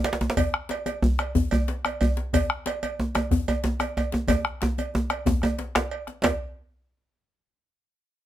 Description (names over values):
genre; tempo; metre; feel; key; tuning
west african traditional, West African drum ensemble; 123 BPM (dotted quarters); 12/8; straight; none; none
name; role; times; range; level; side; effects
djembe; percussion; 0.0-6.4 s; none; -25 LUFS; right 1 dB; none
cowbell; percussion; 0.1-6.4 s; none; -30 LUFS; right 6 dB; none
djembe; percussion; 0.2-6.4 s; none; -29 LUFS; left 4 dB; none
bombo; percussion; 0.4-6.4 s; none; -26 LUFS; left 1 dB; none
room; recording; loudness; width
light reverb; close, detailed microphones; -23 LUFS; side -12 dB against mid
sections
0.0-6.2 A section; 6.2-8.2 B section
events
drum fill 4.3-6.2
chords
none